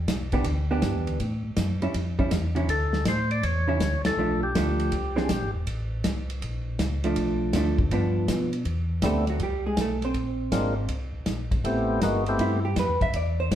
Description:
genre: soul jazz organ trio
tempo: 161 BPM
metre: 4/4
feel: swing 66% on 8ths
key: C major from 8.7 s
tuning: A4 = 440 Hz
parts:
  - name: mellow tonewheel organ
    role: bass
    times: 0.0-13.6 s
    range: E1 to B2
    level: -28 LUFS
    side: equal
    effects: chorus vibrato, slow rotary speaker
  - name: warm soul drum kit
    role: drums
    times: 0.1-13.6 s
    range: hi-hat, kick drum, ride cymbal, snare drum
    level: -29 LUFS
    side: equal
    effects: none
  - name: vintage hollow-body jazz guitar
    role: accompaniment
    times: 0.3-13.5 s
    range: D3 to E5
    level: -28 LUFS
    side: right 2 dB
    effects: none
  - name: percussive tonewheel organ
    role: melody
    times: 2.7-5.5, 9.0-12.6 s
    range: G3 to D5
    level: -27 LUFS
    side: left 1 dB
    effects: slow rotary speaker
room: wet studio reverb, RT60 0.9 s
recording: heard from further back in the room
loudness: -23 LUFS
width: side -11 dB against mid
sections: 0.0-8.7 A section; 8.7-13.6 B section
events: band accent 4.0; hollow-body jazz guitar solo 8.7-13.6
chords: 0.0 Em7; 1.2 A7; 2.7 Dmaj7sus2; 4.2 Bm7b5; 4.9 E7alt; 5.7 Am; 6.4 Bbm; 7.2 Bm7b5; 7.9 G7; 8.7 Cmaj9; 10.2 Bb9; 11.6 Am9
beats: 0.09 0.46 0.83 | 1.21 1.58 1.95 2.32 | 2.70 3.07 3.44 3.82 | 4.19 4.56 4.93 5.31 | 5.68 6.05 6.42 6.80 | 7.17 7.54 7.92 8.29 | 8.66 9.03 9.41 9.78 | 10.15 10.52 10.90 11.27 | 11.64 12.01 12.39 12.76 | 13.13 13.50

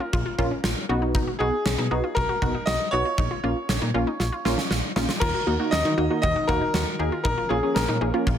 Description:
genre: synth-pop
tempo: 118 BPM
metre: 4/4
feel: straight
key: Eb minor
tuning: A4 = 441 Hz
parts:
  - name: clear concert grand piano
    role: melody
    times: 0.0-8.2 s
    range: Ab4 to D#5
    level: -27 LUFS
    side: left 1 dB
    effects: ping-pong delay
  - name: wide unison pluck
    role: arpeggios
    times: 0.0-8.4 s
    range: Db4 to F#4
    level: -33 LUFS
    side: left 3 dB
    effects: ping-pong delay
  - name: slap-like FM bass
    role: bass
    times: 0.1-8.4 s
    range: Bb1 to Eb3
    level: -28 LUFS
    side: equal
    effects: none
  - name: gated 80s drum kit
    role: drums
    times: 0.1-8.4 s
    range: crash cymbal, kick drum, snare drum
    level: -27 LUFS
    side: equal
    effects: none
  - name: funky polysynth comp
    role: accompaniment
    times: 0.4-8.3 s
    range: Bb3 to Ab4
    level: -28 LUFS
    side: right 1 dB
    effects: chorus
  - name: warm analog pad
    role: sustained chords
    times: 5.2-8.4 s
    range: Eb3 to Bb4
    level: -31 LUFS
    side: right 1 dB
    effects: wide subtle chorus
room: light reverb, small room ambience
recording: none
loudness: -21 LUFS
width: side -9 dB against mid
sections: 0.0-5.2 A section; 5.2-8.4 B section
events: drum fill 4.2-5.2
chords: 0.0 Bbm; 0.9 B; 3.2 Bbm; 5.2 Ebm; 7.2 Bbm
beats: 0.13 0.64 | 1.15 1.66 2.16 2.67 | 3.18 3.69 4.20 4.71 | 5.21 5.72 6.23 6.74 | 7.25 7.76 8.27

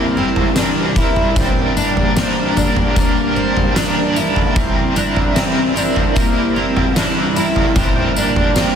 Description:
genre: dream pop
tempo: 75 BPM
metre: 4/4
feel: straight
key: unclear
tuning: A4 = 440 Hz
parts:
  - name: cranked stack guitar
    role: accompaniment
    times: 0.0-8.8 s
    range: C3 to Bb4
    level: -21 LUFS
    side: right 1 dB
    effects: overdrive, tremolo, wide subtle chorus
  - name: phased analog pad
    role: sustained chords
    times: 0.0-8.8 s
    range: G3 to Bb4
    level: -20 LUFS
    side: right 1 dB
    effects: phaser, chorus
  - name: fingerpicked twelve-string acoustic guitar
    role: arpeggios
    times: 0.0-8.8 s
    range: Bb3 to E4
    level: -20 LUFS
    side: left 2 dB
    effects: lush chorus, tape echo
  - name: oversized low-tuned drum kit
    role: drums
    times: 0.4-8.7 s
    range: kick drum, snare drum, tambourine, toms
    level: -18 LUFS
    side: equal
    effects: none
room: moderate concert hall reverb, RT60 2.6 s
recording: dense, heavily limited modern master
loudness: -13 LUFS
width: side -8 dB against mid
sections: 0.0-8.8 A section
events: none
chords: 0.0 C7; 1.4 Gm; 4.6 C7; 7.8 Gm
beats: 0.56 | 1.36 2.16 2.96 3.76 | 4.56 5.36 6.16 6.96 | 7.76 8.56

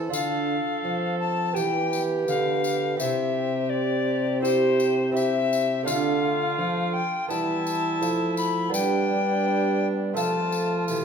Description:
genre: classical, renaissance-style consort dance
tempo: 84 BPM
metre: 4/4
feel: straight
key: D dorian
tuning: A4 = 439 Hz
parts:
  - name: rich viola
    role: second line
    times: 0.0-11.0 s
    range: D4 to A4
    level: -29 LUFS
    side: right 3 dB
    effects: none
  - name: dark bassoon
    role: accompaniment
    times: 0.0-11.0 s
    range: G3 to D4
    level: -31 LUFS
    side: left 1 dB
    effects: none
  - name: lute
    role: accompaniment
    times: 0.0-11.0 s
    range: C3 to F5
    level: -31 LUFS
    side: right 6 dB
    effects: none
  - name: warm trombone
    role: bass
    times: 0.0-11.0 s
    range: C3 to G3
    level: -29 LUFS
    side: right 1 dB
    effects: none
  - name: bright alto recorder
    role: melody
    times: 0.1-10.8 s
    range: C5 to B5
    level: -27 LUFS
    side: left 6 dB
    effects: none
  - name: tambourine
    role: percussion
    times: 0.1-11.0 s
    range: none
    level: -37 LUFS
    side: left 4 dB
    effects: none
room: wet recital hall reverb, RT60 1.4 s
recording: minimal, uncompressed stereo recording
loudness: -22 LUFS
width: side -6 dB against mid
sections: 0.0-11.0 A section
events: none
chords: 0.1 Dm; 1.6 Em; 3.0 C; 5.9 Dm; 7.3 Em; 8.7 G; 10.2 F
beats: | 0.12 0.84 1.56 2.28 | 3.00 3.71 4.43 5.15 | 5.87 6.58 7.30 8.02 | 8.74 9.46 10.18 10.89

